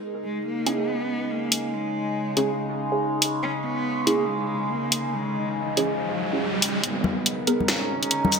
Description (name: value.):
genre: deep dubstep.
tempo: 141 BPM.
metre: 4/4.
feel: swing 61% on 16ths, half-time.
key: unclear.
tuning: A4 = 440 Hz.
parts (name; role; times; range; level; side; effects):
overtone-sweeping drone; sustained chords; 0.0-8.4 s; C#3 to A#4; -28 LUFS; equal; chorus, built-in reverb.
dark cello; melody; 0.2-8.4 s; G#3 to C#4; -30 LUFS; equal; low-pass filter, dub echo.
filtered dub chord stab; stabs; 0.7-7.6 s; B3 to A#4; -27 LUFS; right 3 dB; phaser, lush chorus, cassette tape, dub echo.
garage drum kit; drums; 0.7-8.4 s; hi-hat, shaker, snare drum; -21 LUFS; equal; high-pass filter on hats, high-pass filter on snare, high-pass filter on perc, gated reverb.
riser; sound effects; 5.0-8.4 s; none; -31 LUFS; right 1 dB; none.
dark detuned saw bass; bass; 6.8-8.4 s; G#1 to B1; -36 LUFS; equal; high-pass filter.
congas; percussion; 7.0-8.3 s; none; -26 LUFS; left 4 dB; none.
room: wet plate reverb, RT60 1.7 s, digital ambience.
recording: bright 1980s-style digital production.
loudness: -22 LUFS.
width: side -5 dB against mid.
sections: 0.0-6.8 A section; 6.8-8.4 B section.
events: riser 5.0-6.8, 6.8-8.4; build-up 6.8-8.4; filter sweep on cello 6.8-8.4.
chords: 0.0 C#5; 6.8 G#madd9.